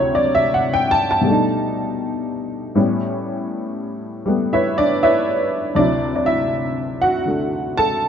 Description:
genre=solo jazz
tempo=80 BPM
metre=4/4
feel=swing 68% on 8ths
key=unclear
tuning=A4 = 440 Hz
part: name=honky-tonk upright piano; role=solo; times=0.0-8.1 s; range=D2 to A5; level=-17 LUFS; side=equal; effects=none
room=light reverb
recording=dark, warm production, nothing above 7.8 kHz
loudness=-17 LUFS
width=side -8 dB against mid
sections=0.0-5.8 A section; 5.8-8.1 B section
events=honky-tonk piano solo 0.0-5.8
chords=0.0 D9; 1.3 B7alt; 2.8 A9; 5.8 D9

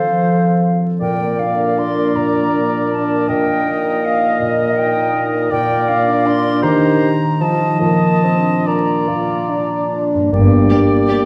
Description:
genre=classical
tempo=134-174 BPM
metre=3/4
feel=rubato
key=Bb major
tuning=A4 = 440 Hz
part: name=clear clarinet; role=second line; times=0.0-11.3 s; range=F4 to Bb4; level=-27 LUFS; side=equal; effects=none
part: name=clear oboe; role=second line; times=0.0-11.3 s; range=C5 to Eb5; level=-25 LUFS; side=equal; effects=none
part: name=silver concert flute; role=second line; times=0.0-11.3 s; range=Eb5 to C6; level=-23 LUFS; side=equal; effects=none
part: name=warm bassoon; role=accompaniment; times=0.0-11.3 s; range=Bb2 to F4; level=-23 LUFS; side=equal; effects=none
part: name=concert harp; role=arpeggios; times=0.0-11.3 s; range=G2 to C5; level=-20 LUFS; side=equal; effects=none
part: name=rich studio cello section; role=bass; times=10.3-10.6 s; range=G2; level=-18 LUFS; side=equal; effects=none
part: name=warm studio double bass section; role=bass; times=10.3-10.6 s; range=G1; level=-20 LUFS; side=equal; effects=none
part: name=warm studio violin section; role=melody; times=10.7-11.2 s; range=D5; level=-32 LUFS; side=equal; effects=none
part: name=warm studio violin section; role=second line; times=10.7-11.2 s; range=G4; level=-28 LUFS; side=equal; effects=none
part: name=warm chamber viola section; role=accompaniment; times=10.7-11.2 s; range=Bb3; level=-26 LUFS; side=equal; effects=none
room=wet recital hall reverb, RT60 1.4 s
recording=heard from further back in the room, vinyl crackle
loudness=-16 LUFS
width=mono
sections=0.0-10.3 A section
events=none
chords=0.0 F; 1.0 Bb; 3.3 Eb/Bb; 5.5 Bb; 6.6 Cm/Eb; 7.4 F7; 7.8 Bb; 10.3 Gm

